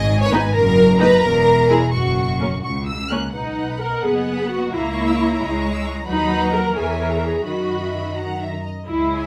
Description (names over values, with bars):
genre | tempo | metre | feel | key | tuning
quick classical-period movement for string orchestra | 86 BPM (dotted quarters) | 6/8 | straight | B major | A4 = 440 Hz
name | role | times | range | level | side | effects
warm symphonic violin section | melody | 0.0-9.3 s | F#5 to F#6 | -30 LUFS | equal | none
warm symphonic violin section | second line | 0.0-9.3 s | F#4 to E6 | -23 LUFS | equal | none
rich symphonic cello section | bass | 0.0-9.3 s | C#2 to B3 | -26 LUFS | equal | none
warm symphonic double bass section | bass | 0.0-9.3 s | E1 to F#2 | -27 LUFS | equal | none
warm studio viola section | accompaniment | 0.3-9.3 s | G#3 to A#4 | -24 LUFS | equal | none
room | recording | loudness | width
moderate studio reverb, RT60 0.6 s | none | -19 LUFS | mono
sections
0.0-3.3 A section; 3.3-9.3 B section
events
none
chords
0.0 G#m; 0.5 D#m/F#; 1.2 E; 1.9 F#; 3.3 B; 4.7 A#dim/C#; 6.1 B/D#; 6.8 C#m/E; 7.5 B/F#